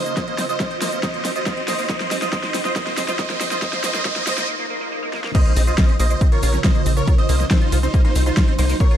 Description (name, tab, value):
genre	uplifting trance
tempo	139 BPM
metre	4/4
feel	straight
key	Bb minor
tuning	A4 = 440 Hz
part	dense compressed supersaw	melody	0.0-9.0 s	Eb4 to Eb5	-25 LUFS	right 2 dB	vintage 12-bit sampler grit, sidechain pumping, ping-pong delay
part	bright concert grand piano	second line	0.0-9.0 s	C6 to Eb6	-32 LUFS	right 4 dB	sidechain pumping, dub echo
part	shimmering ambient pad	sustained chords	0.0-9.0 s	Db3 to Gb4	-31 LUFS	equal	chorus, built-in reverb, sidechain pumping
part	liquid acid bass	arpeggios	0.0-9.0 s	Bb3 to F4	-30 LUFS	right 1 dB	analog chorus, sidechain pumping, dub echo
part	tight sequencer bass	bass	0.0-8.7 s	Bb1 to Db2	-20 LUFS	equal	sidechain pumping, high-pass filter
part	riser, swell and impact	sound effects	0.0-7.1 s	none	-29 LUFS	equal	none
part	big-room dance drum kit	drums	0.1-9.0 s	crash cymbal, hi-hat, shaker, snare drum	-26 LUFS	equal	overdrive, sidechain pumping on hats, sidechain pumping on perc, sidechain pumping on cymbals
part	electronic kick drum	drums	0.2-8.9 s	none	-18 LUFS	equal	none
room	light reverb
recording	dark, warm production, high-pass filter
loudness	-17 LUFS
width	side -10 dB against mid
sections	0.0-5.3 A section; 5.3-9.0 B section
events	build-up 0.0-5.3; drum fill 0.0-4.5, 5.1; riser 0.0-4.5; filter sweep on acid bass 0.0-5.3; filter sweep 0.0-5.3; break 4.5-5.3; swell 4.5-5.3; drop 5.3-9.0; impact 5.3-7.1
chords	0.2 Cdim; 1.9 Bbm; 3.6 Dbsus2; 5.3 Bbm; 7.1 Cdim